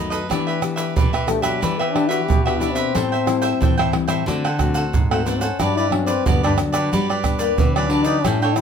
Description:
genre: samba and choro.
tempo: 91 BPM.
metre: 4/4.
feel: straight.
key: unclear.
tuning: A4 = 440 Hz.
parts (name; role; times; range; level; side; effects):
cavaquinho; accompaniment; 0.0-8.6 s; D4 to G5; -24 LUFS; right 2 dB; none.
nylon-string guitar; accompaniment; 0.0-8.6 s; F#2 to G4; -25 LUFS; left 5 dB; none.
nylon-string guitar; bass; 0.0-8.6 s; G2 to G3; -26 LUFS; right 1 dB; none.
egg shaker, pandeiro, surdo and tamborim; percussion; 0.1-8.6 s; none; -21 LUFS; right 3 dB; none.
breathy trombone; second line; 1.3-8.6 s; F#3 to G4; -22 LUFS; left 5 dB; none.
room: moderate studio ambience, RT60 0.5 s.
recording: minimal, uncompressed stereo recording.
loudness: -17 LUFS.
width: side -7 dB against mid.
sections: 0.0-8.6 A section.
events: trombone solo 0.0-8.6.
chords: 0.3 Em7; 2.9 Am7; 4.3 D7; 5.6 Gmaj7.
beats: | 0.30 0.96 1.63 2.29 | 2.95 3.61 4.27 4.93 | 5.60 6.26 6.92 7.58 | 8.24.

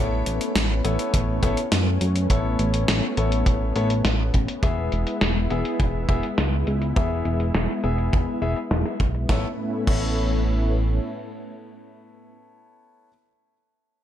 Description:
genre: synthwave.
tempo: 103 BPM.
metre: 4/4.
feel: straight.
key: A major.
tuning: A4 = 440 Hz.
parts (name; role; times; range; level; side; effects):
analog string pad; sustained chords; 0.0-12.4 s; A2 to E4; -29 LUFS; left 1 dB; ensemble chorus, sidechain pumping.
clear baby grand piano; stabs; 0.0-13.1 s; B3 to E5; -29 LUFS; left 3 dB; low-pass filter, digital delay.
chorused synth bass; bass; 0.0-11.0 s; E1 to F#2; -24 LUFS; equal; sidechain pumping.
gated 80s digital drum machine; drums; 0.3-10.0 s; crash cymbal, hi-hat, snare drum; -27 LUFS; equal; gated reverb, gated reverb snare, low-pass filter on hats, low-pass filter on perc, low-pass filter on snare, low-pass filter on toms, low-pass filter on cymbals, low-pass filter on room.
kick drum; drums; 1.1-10.0 s; none; -23 LUFS; equal; none.
room: light reverb.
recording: none.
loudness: -20 LUFS.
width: side -11 dB against mid.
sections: 0.0-9.3 A section; 9.3-11.6 B section.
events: filter sweep on drum 0.0-9.3.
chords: 0.0 Aadd9; 4.6 E; 9.3 Aadd9.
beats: 0.55 1.14 1.72 | 2.30 2.88 3.46 4.05 | 4.63 5.21 5.79 6.38 | 6.96 7.54 8.12 8.71 | 9.29 9.87 10.46 11.04.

